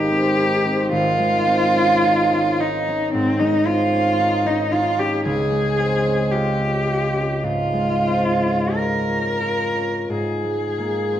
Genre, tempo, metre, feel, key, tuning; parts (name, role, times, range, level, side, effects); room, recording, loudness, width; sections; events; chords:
classical, impressionist duo for cello and harp; 43-58 BPM; 4/4; rubato; A4 = 441 Hz
warm cello; melody; 0.0-11.2 s; C4 to Bb4; -20 LUFS; equal
concert harp; accompaniment; 0.0-11.2 s; Ab1 to F4; -21 LUFS; equal
wet recital hall reverb, RT60 1.4 s; dark, warm production; -17 LUFS; side -11 dB against mid
0.0-11.2 A section
0.0 Fm7/Ab (rootless); 0.9 Dbmaj9/Ab; 5.2 Dbmaj7; 10.1 Abadd9